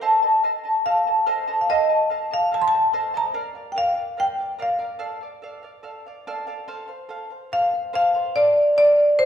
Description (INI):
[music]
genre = andean folk, Andean ensemble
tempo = 72 BPM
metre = 4/4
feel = straight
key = unclear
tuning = A4 = 440 Hz
[part]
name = charango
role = accompaniment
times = 0.0-9.3 s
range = A4 to A5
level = -24 LUFS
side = equal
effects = none
[part]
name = marimba with medium hard mallets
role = melody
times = 0.9-9.3 s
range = C5 to C6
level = -19 LUFS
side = equal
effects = none
[sound]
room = wet recital hall reverb, RT60 1.3 s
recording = recorded in a church or concert hall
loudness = -18 LUFS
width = side -8 dB against mid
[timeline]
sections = 0.0-6.7 A section; 6.7-9.3 A section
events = none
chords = 0.0 F7; 3.4 Bb; 5.0 Dm; 6.7 F